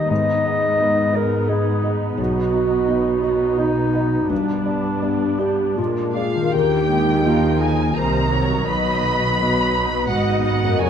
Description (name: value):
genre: cinematic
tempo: 84 BPM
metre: 3/4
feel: rubato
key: unclear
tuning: A4 = 440 Hz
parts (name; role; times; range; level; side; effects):
- dark clarinet; second line; 0.0-10.9 s; D4 to Eb5; -22 LUFS; right 1 dB; none
- dark concert grand piano; accompaniment; 0.0-10.9 s; B1 to F5; -24 LUFS; left 2 dB; none
- muted symphonic viola section; accompaniment; 0.0-10.9 s; F3 to G4; -27 LUFS; right 1 dB; none
- concert harp; arpeggios; 0.0-10.9 s; Gb2 to Bb4; -28 LUFS; left 8 dB; none
- muted symphonic cello section; bass; 0.0-10.9 s; Gb2 to Eb3; -25 LUFS; right 3 dB; none
- muted chamber violin section; melody; 6.1-10.9 s; F5 to B5; -23 LUFS; equal; none
- muted symphonic double bass section; bass; 6.5-10.9 s; Gb1 to Eb2; -25 LUFS; right 4 dB; none
- muted symphonic violin section; second line; 7.2-10.9 s; Bb4 to D#5; -28 LUFS; left 2 dB; none
room: moderate scoring stage reverb, RT60 1.6 s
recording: nothing above 10.7 kHz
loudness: -17 LUFS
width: side -8 dB against mid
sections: 0.0-6.5 A section; 6.5-10.9 B section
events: none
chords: 0.1 Abm; 2.2 B; 4.3 G; 5.8 Bb7; 6.5 Ebadd9; 8.7 B